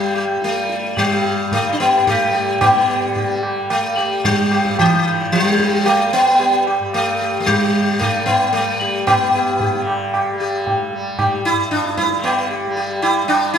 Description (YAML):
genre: indian classical, Hindustani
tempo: 112 BPM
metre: 3/4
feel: straight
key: G raga bhupali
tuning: A4 = 440 Hz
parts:
  - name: sitar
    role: melody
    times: 0.0-13.6 s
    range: E3 to G4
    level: -16 LUFS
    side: left 1 dB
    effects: none
  - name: tanpura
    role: drone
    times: 0.0-13.6 s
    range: G2 to G3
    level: -26 LUFS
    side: equal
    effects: none
  - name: tabla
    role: percussion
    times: 0.1-13.5 s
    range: none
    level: -21 LUFS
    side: right 2 dB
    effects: none
room: wet scoring stage reverb, RT60 1.9 s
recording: none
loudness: -15 LUFS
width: side -8 dB against mid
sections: 0.0-2.6 A section; 2.6-13.6 B section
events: speeding up 0.0-13.6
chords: none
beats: 0.42 | 0.97 1.52 2.06 | 2.61 3.15 3.70 | 4.24 4.78 5.32 | 5.86 6.40 6.94 | 7.47 8.01 8.54 | 9.07 9.60 10.13 | 10.66 11.19 11.72 | 12.24 12.77 13.29